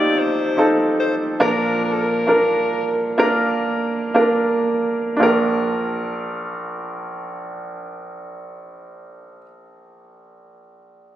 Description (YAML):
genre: pop ballad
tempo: 56-76 BPM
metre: 4/4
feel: straight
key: Bb major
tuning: A4 = 440 Hz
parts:
  - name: breathy alto saxophone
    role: melody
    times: 0.0-3.2 s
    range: A4 to D5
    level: -23 LUFS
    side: left 3 dB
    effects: none
  - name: warm grand piano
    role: accompaniment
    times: 0.0-11.2 s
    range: Bb1 to C5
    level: -18 LUFS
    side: right 1 dB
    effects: none
room: moderate lush hall reverb, RT60 3.0 s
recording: recorded on a phone in the room, club ambience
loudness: -17 LUFS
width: side -12 dB against mid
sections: 0.0-5.2 A section; 5.2-9.4 B section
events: slowing down 0.0-5.2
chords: 0.0 F7; 1.4 Bb